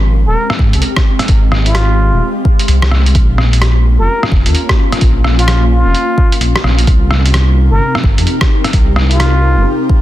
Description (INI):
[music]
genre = future garage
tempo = 129 BPM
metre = 4/4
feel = swing 62% on 16ths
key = unclear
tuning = A4 = 440 Hz
[part]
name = ethereal airy pad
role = sustained chords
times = 0.0-10.0 s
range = C3 to Bb4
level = -19 LUFS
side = left 1 dB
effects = ensemble chorus, built-in reverb, sidechain pumping
[part]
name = dark detuned saw bass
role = bass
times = 0.0-9.7 s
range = Eb1 to Ab2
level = -11 LUFS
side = equal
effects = tube saturation, sidechain pumping
[part]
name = trumpet with plunger mute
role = melody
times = 0.3-9.7 s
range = F4 to Bb4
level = -20 LUFS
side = equal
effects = dub echo
[part]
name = lo-fi sampler-style drum kit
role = drums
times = 0.5-9.3 s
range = hi-hat, rim click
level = -17 LUFS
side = equal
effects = soft clipping on snare
[part]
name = electronic kick drum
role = drums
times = 0.6-10.0 s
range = none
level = -11 LUFS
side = equal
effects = none
[sound]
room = little or no reverb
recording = dense, heavily limited modern master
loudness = -9 LUFS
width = side -14 dB against mid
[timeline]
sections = 0.0-10.0 A section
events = none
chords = 0.0 Abmaj7; 3.2 Bbm; 6.9 Cm7